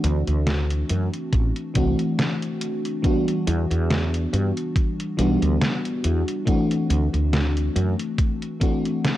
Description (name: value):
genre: vaporwave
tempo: 70 BPM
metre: 4/4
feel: swing 55% on 16ths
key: unclear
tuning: A4 = 440 Hz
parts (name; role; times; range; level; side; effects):
- FM electric piano with soft pad layer; accompaniment; 0.0-9.2 s; E3 to F#4; -24 LUFS; left 1 dB; lush chorus, cassette tape, tape echo
- woody fretless electric bass; bass; 0.0-7.9 s; A1 to G2; -21 LUFS; equal; lush chorus
- detuned 8-bit digital drum machine; drums; 0.0-9.2 s; hi-hat, snare drum; -26 LUFS; equal; overdrive, vintage 12-bit sampler grit
- electronic kick drum; drums; 1.3-8.8 s; none; -22 LUFS; equal; overdrive, vintage 12-bit sampler grit
room: light reverb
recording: dry, gritty hardware recording, cassette tape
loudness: -20 LUFS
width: side -14 dB against mid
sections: 0.0-9.2 A section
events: none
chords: 0.0 D9; 3.0 Em9; 6.5 D9